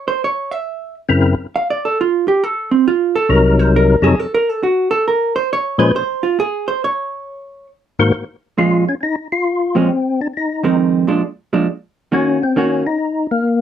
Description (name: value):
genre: jazz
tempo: 136 BPM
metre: 4/4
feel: swing 66% on 8ths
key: Bb minor from 8.6 s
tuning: A4 = 440 Hz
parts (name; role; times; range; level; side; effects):
- vintage hollow-body jazz guitar; accompaniment; 0.0-12.8 s; F2 to F5; -16 LUFS; right 4 dB; none
- percussive tonewheel organ; melody; 1.1-13.6 s; C2 to C5; -14 LUFS; left 2 dB; slow rotary speaker, chorus vibrato, slapback echo
room: moderate booth ambience, RT60 0.2 s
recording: dry, close 1970s-style studio recording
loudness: -14 LUFS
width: side -9 dB against mid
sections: 0.0-8.6 A section; 8.6-13.6 B section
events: hollow-body jazz guitar solo 0.0-8.6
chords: 0.0 Gb7#11; 1.5 N.C.; 3.3 Cm7b5; 4.2 N.C.; 5.0 Bbm9; 6.8 N.C.; 7.7 Ab7; 8.6 Bbm7; 10.3 Fm7; 11.2 Bb7; 12.1 Ebm7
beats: 0.20 0.64 1.08 | 1.52 1.96 2.40 2.85 | 3.29 3.73 4.17 4.61 | 5.05 5.49 5.93 6.37 | 6.81 7.25 7.69 8.13 | 8.57 9.01 9.45 9.90 | 10.34 10.78 11.22 11.67 | 12.11 12.55 13.00 13.44